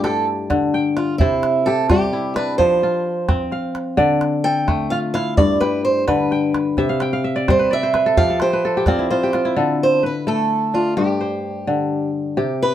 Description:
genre	west african traditional, West African string and xylophone music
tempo	86 BPM (dotted quarters)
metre	12/8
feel	straight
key	unclear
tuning	A4 = 441 Hz
part	fingerpicked swing-style acoustic guitar	melody	0.0-12.7 s	E4 to G5	-19 LUFS	right 2 dB	none
part	kora	arpeggios	0.0-12.7 s	G2 to G5	-19 LUFS	left 2 dB	none
part	calabash	percussion	0.0-9.5 s	none	-21 LUFS	right 1 dB	none
room	moderate small room reverb, RT60 0.5 s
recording	band playing live in one room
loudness	-16 LUFS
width	side -11 dB against mid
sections	0.0-9.6 A section; 9.6-12.7 B section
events	steel-string acoustic guitar solo 0.0-9.6; kora fill 6.8-9.6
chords	0.0 G5; 1.2 C; 2.6 F5; 4.0 Dm; 5.4 G; 6.8 C; 8.2 F5; 9.6 D5; 11.0 G5

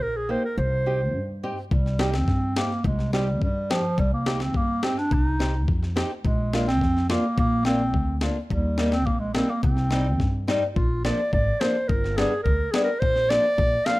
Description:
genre	klezmer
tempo	106 BPM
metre	2/4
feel	straight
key	C minor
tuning	A4 = 440 Hz
part	mellow clarinet	melody	0.0-14.0 s	F3 to F5	-25 LUFS	right 1 dB	none
part	upright bass	bass	0.0-13.8 s	G1 to G2	-26 LUFS	equal	none
part	nylon-string guitar	accompaniment	0.3-14.0 s	F3 to G4	-28 LUFS	left 1 dB	none
part	breakbeat sampler-style drum kit	drums	1.7-14.0 s	kick drum, snare drum	-26 LUFS	left 1 dB	none
room	light reverb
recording	close, detailed microphones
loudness	-21 LUFS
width	side -19 dB against mid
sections	0.0-1.7 A section; 1.7-10.8 A section; 10.8-14.0 B section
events	none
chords	0.0 Eb; 0.6 Cm; 6.2 Bb; 8.5 Eb; 9.6 Cm; 10.8 Bb; 11.9 G; 13.0 Bb

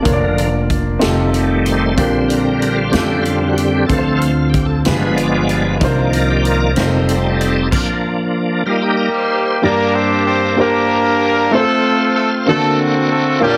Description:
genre	slow gospel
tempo	63 BPM (dotted quarters)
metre	6/8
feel	straight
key	Bb major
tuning	A4 = 440 Hz
part	warm baby grand piano	accompaniment	0.0-13.6 s	G2 to D5	-19 LUFS	equal	none
part	bright tonewheel organ	sustained chords	0.0-13.6 s	D3 to C6	-21 LUFS	equal	slow rotary speaker, chorus vibrato
part	upright bass	bass	0.1-7.7 s	F1 to F2	-21 LUFS	equal	none
part	swinging big-band drum kit	drums	0.1-7.9 s	crash cymbal, hi-hat, kick drum, snare drum	-24 LUFS	equal	none
part	clear horn section	melody	8.7-13.6 s	G3 to C5	-18 LUFS	equal	none
room	moderate large studio reverb, RT60 1.4 s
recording	heavily compressed radio sound, multiband compression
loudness	-15 LUFS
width	mono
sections	0.0-9.6 A section; 9.6-13.6 B section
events	tonewheel organ solo 0.0-9.6; stop 7.7-9.6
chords	0.1 Bb/F; 1.0 F9; 2.0 Bb69; 3.9 Dm7; 4.9 G7b9; 5.8 Cm11; 6.8 F7; 7.7 Bb/F; 8.7 Eb69/G; 9.6 Gm; 11.5 F; 12.5 D7b13

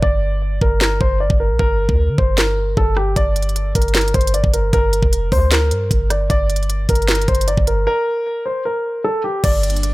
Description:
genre	hip hop, trap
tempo	153 BPM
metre	4/4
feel	half-time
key	G minor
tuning	A4 = 440 Hz
part	dark concert grand piano	melody	0.0-9.9 s	G4 to D5	-20 LUFS	equal	low-pass filter, tape echo
part	clean 808-style bass	bass	0.0-9.9 s	F1 to D3	-18 LUFS	equal	none
part	trap drum kit	drums	0.0-9.9 s	crash cymbal, handclaps, hi-hat, kick drum, rim click, snare drum	-18 LUFS	equal	none
room	little or no reverb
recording	none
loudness	-15 LUFS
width	side -19 dB against mid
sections	0.0-9.4 A section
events	break 0.0-3.2, 7.9-9.4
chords	0.0 Gm

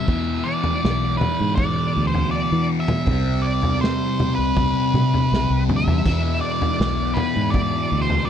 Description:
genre	psychedelic rock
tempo	80 BPM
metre	4/4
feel	straight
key	unclear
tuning	A4 = 436 Hz
part	octave-fuzz lead guitar	melody	0.0-8.3 s	B4 to E5	-25 LUFS	right 1 dB	distortion, slapback echo
part	thick fuzz guitar	riff	0.0-8.3 s	E2 to C4	-22 LUFS	left 1 dB	distortion, phaser
part	fingered electric bass	bass	0.1-8.3 s	B1 to E3	-23 LUFS	equal	none
part	raw garage drum kit	drums	0.1-8.3 s	kick drum, snare drum, splash cymbal, toms	-25 LUFS	equal	none
room	little or no reverb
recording	dry, close 1970s-style studio recording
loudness	-18 LUFS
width	side -9 dB against mid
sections	0.0-8.3 A section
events	drum fill 5.3-6.1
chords	0.1 E; 3.1 Cmaj7; 6.1 E

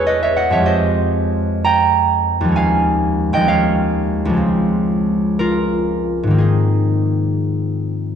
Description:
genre	classical, solo harp piece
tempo	58-67 BPM (dotted quarters)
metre	6/8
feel	rubato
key	Ab major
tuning	A4 = 440 Hz
part	concert harp	solo	0.0-8.2 s	Db2 to Bb5	-14 LUFS	equal	none
room	wet scoring stage reverb, RT60 1.7 s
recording	dark, warm production, nothing above 10.5 kHz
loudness	-14 LUFS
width	side -8 dB against mid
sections	0.0-8.2 A section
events	none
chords	0.0 Gbm11/Fb; 0.7 Fm9; 2.6 Eb11; 4.4 Dbmaj7; 6.4 Abadd9

